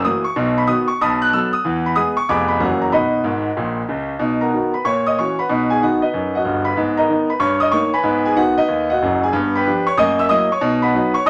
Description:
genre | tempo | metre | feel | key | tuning
jazz, stride piano | 187 BPM | 4/4 | swing 65% on 8ths | B major | A4 = 440 Hz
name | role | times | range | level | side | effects
bright concert grand piano | solo | 0.0-11.3 s | F1 to F#6 | -18 LUFS | equal | none
room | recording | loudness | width
moderate studio reverb, RT60 0.7 s | none | -18 LUFS | mono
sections
0.0-4.2 A section; 4.2-11.3 A section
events
grand piano fill 3.2-4.2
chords
0.4 B; 1.0 B5; 1.6 E; 2.3 Fdim7; 2.6 F#7; 2.9 B; 4.9 F#7/A#; 5.5 B; 6.8 G#m; 7.4 D#7/G; 8.1 G#m; 9.3 G7; 10.0 F#7; 10.6 B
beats
0.04 | 0.36 0.68 1.00 1.32 | 1.64 1.96 2.29 2.61 | 2.93 3.25 3.57 3.89 | 4.21 4.53 4.85 5.17 | 5.50 5.82 6.14 6.46 | 6.78 7.10 7.42 7.74 | 8.06 8.38 8.70 9.02 | 9.34 9.66 9.98 10.30 | 10.62 10.95 11.27

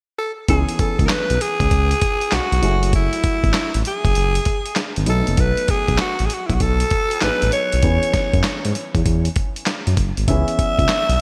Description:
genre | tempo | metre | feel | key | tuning
R&B, new jack swing | 98 BPM | 4/4 | swing 65% on 16ths | C# minor | A4 = 440 Hz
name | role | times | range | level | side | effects
raspy alto saxophone | melody | 0.2-11.2 s | E4 to E5 | -24 LUFS | equal | none
warm baby grand piano | accompaniment | 0.5-11.2 s | E3 to G#4 | -30 LUFS | equal | none
smooth synth bass | bass | 0.5-11.2 s | F#1 to G#2 | -22 LUFS | equal | none
dusty soul sampler-style drum kit | drums | 0.5-11.2 s | handclaps, hi-hat, kick drum, snare drum | -23 LUFS | equal | gated reverb
room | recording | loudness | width
light reverb, small room ambience | bright 1980s-style digital production | -19 LUFS | mono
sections
0.5-11.2 A section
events
none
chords
0.5 C#m7; 2.6 F#m9; 5.1 B7; 7.8 E6; 10.3 C#m7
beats
| 0.48 1.09 1.71 2.32 | 2.93 3.54 4.16 4.77 | 5.38 5.99 6.61 7.22 | 7.83 8.44 9.05 9.67 | 10.28 10.89

